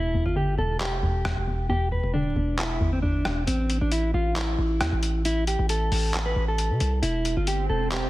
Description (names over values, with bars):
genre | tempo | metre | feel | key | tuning
hip hop, trap | 135 BPM | 4/4 | half-time | A minor | A4 = 438 Hz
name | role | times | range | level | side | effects
mellow electric guitar | melody | 0.0-8.1 s | C4 to B4 | -28 LUFS | equal | digital delay
hollow square pluck | accompaniment | 0.0-3.5 s | E2 to D3 | -27 LUFS | equal | chorus
distorted 808-style bass | bass | 0.0-8.1 s | D1 to C3 | -26 LUFS | equal | distortion
boom bap sampler-style drum kit | drums | 0.8-8.0 s | handclaps, hi-hat, rim click | -31 LUFS | left 1 dB | soft clipping on snare
swell | sound effects | 7.4-8.1 s | none | -33 LUFS | right 5 dB | none
room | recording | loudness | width
little or no reverb | dense, heavily limited modern master, vinyl crackle | -23 LUFS | side -17 dB against mid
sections
0.0-8.1 A section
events
break 0.0-3.5; swell 7.4-8.1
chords
0.0 Em7; 3.5 A5; 7.0 Em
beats
0.36 0.81 1.25 | 1.70 2.14 2.58 3.03 | 3.47 3.92 4.36 4.81 | 5.25 5.70 6.14 6.58 | 7.03 7.47 7.92